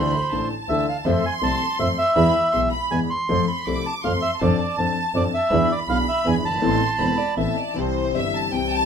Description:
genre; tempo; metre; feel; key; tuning
tango; 162 BPM; 3/4; rubato; A harmonic minor; A4 = 441 Hz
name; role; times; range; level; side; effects
bandoneon; melody; 0.0-7.3 s; C5 to C6; -23 LUFS; right 1 dB; none
clear studio violin section; second line; 0.0-8.9 s; C5 to D6; -27 LUFS; equal; none
clear concert grand piano; accompaniment; 0.0-8.9 s; E1 to A4; -25 LUFS; left 4 dB; none
rich double bass; bass; 0.0-8.9 s; E1 to F2; -25 LUFS; right 2 dB; none
hollow-body jazz guitar; second line; 7.0-7.7 s; C5 to E5; -29 LUFS; right 8 dB; none
room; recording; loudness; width
light reverb; minimal, uncompressed stereo recording; -19 LUFS; side -7 dB against mid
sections
0.0-7.8 A section; 7.8-8.9 B section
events
violin section solo 7.8-8.9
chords
0.0 Dsus2; 1.1 F; 2.2 E; 3.3 F; 4.4 Dm7/F; 5.5 E7; 6.6 Amadd9; 7.8 C

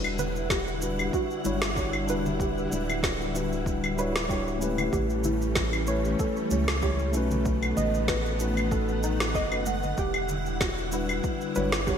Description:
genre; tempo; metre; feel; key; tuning
sunset chillout; 95 BPM; 4/4; swing 55% on 16ths; E dorian; A4 = 440 Hz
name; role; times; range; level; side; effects
mellow tine electric piano; accompaniment; 0.0-12.0 s; G3 to C#5; -31 LUFS; left 1 dB; auto-pan, low-pass filter, digital delay
soft string machine; sustained chords; 0.0-12.0 s; D3 to F#5; -32 LUFS; equal; ensemble chorus
warm sub bass; bass; 0.0-12.0 s; D1 to C#2; -31 LUFS; equal; none
electronic claves, cabasa and snare drum; drums; 0.0-12.0 s; none; -31 LUFS; equal; gated reverb
soft round pluck; arpeggios; 0.2-12.0 s; D#4 to F#5; -33 LUFS; right 2 dB; analog chorus, digital delay
congas; percussion; 0.2-11.7 s; none; -38 LUFS; left 3 dB; none
electronic kick drum; drums; 0.5-12.0 s; none; -32 LUFS; equal; none
room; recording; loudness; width
moderate lush hall reverb, RT60 2.1 s; bright 1980s-style digital production; -25 LUFS; side -8 dB against mid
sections
0.0-12.0 A section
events
none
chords
0.0 Em9; 4.9 A7; 7.5 B7; 10.0 Em9

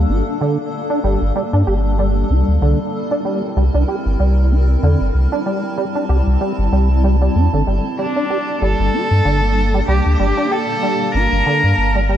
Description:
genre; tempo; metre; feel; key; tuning
IDM; 95 BPM; 4/4; swing 56% on 16ths; G dorian; A4 = 440 Hz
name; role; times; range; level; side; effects
granular cloud pad; sustained chords; 0.0-12.2 s; G3 to A5; -22 LUFS; equal; built-in reverb
deep acid bass; arpeggios; 0.0-12.2 s; D3 to G4; -21 LUFS; right 1 dB; ensemble chorus, ping-pong delay
warm sub bass; bass; 0.0-12.2 s; G1 to G2; -15 LUFS; equal; none
warm cello; melody; 8.0-12.2 s; D4 to Bb4; -19 LUFS; left 1 dB; vintage 12-bit sampler grit, dub echo
room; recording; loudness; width
light reverb, digital ambience; dark, warm production; -14 LUFS; side -10 dB against mid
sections
0.0-12.2 A section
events
none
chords
0.0 Gmadd9; 2.6 C7; 7.7 Gmadd9

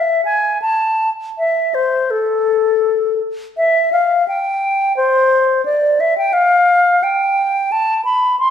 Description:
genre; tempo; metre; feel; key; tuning
classical, baroque-style fantasia for unaccompanied flute; 79-88 BPM; 4/4; rubato; A minor, C major from 3.6 s; A4 = 441 Hz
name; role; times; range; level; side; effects
concert flute; solo; 0.0-8.5 s; A4 to C6; -13 LUFS; left 1 dB; none
room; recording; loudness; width
wet recital hall reverb, RT60 1.4 s; heard from further back in the room; -13 LUFS; side -8 dB against mid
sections
0.0-3.6 A section; 3.6-8.5 A section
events
none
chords
none

